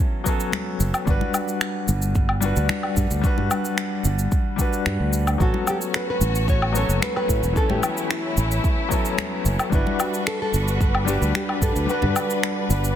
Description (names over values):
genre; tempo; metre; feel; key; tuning
sunset chillout; 111 BPM; 4/4; straight; unclear; A4 = 438 Hz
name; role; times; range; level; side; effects
nylon-string guitar; melody; 0.0-0.5, 5.4-13.0 s; C#4 to C#5; -28 LUFS; equal; digital delay
warm concert grand piano; accompaniment; 0.0-13.0 s; E3 to B4; -26 LUFS; left 3 dB; auto-pan, digital delay
electronic kick drum; drums; 0.3-11.7 s; none; -22 LUFS; right 1 dB; small room ambience
electronic shaker, finger snaps and woodblock; drums; 0.3-12.9 s; none; -27 LUFS; equal; small room ambience, soft clipping on snare
congas; percussion; 0.5-12.8 s; none; -33 LUFS; left 6 dB; none
sustaining fretless electric bass; bass; 0.8-12.9 s; E1 to A2; -22 LUFS; right 1 dB; none
rich studio string section; sustained chords; 5.4-13.0 s; G3 to B4; -29 LUFS; equal; none
room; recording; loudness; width
light reverb, small room ambience; dense, heavily limited modern master; -20 LUFS; side -10 dB against mid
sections
0.0-13.0 A section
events
kick drops out 11.9-13.0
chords
0.0 A69; 1.1 Gmaj7; 5.4 A69; 9.7 Gmaj7